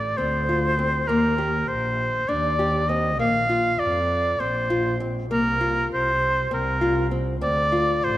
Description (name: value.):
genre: contemporary instrumental, chamber music in an uneven meter.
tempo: 199 BPM (eighths).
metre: 7/8.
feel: straight.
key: Bb major.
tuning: A4 = 438 Hz.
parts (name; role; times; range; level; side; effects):
warm oboe; melody; 0.0-8.2 s; Bb4 to F5; -23 LUFS; equal; none.
warm double bass; bass; 0.0-8.2 s; A1 to F2; -27 LUFS; right 1 dB; none.
nylon-string guitar; arpeggios; 0.2-8.2 s; Bb3 to G4; -26 LUFS; left 2 dB; none.
room: moderate concert hall reverb, RT60 2.0 s.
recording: none.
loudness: -20 LUFS.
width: side -14 dB against mid.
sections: 0.0-8.2 A section.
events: none.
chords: 0.0 Dm7; 1.1 Ebmaj7; 3.2 Bbadd9; 5.3 Fsus4/C; 7.4 Dm7.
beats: 0.18 0.48 0.78 | 1.08 1.39 1.69 1.99 2.29 2.59 2.90 | 3.20 3.50 3.80 4.10 4.41 4.71 5.01 | 5.31 5.61 5.91 6.22 6.52 6.82 7.12 | 7.42 7.72 8.03.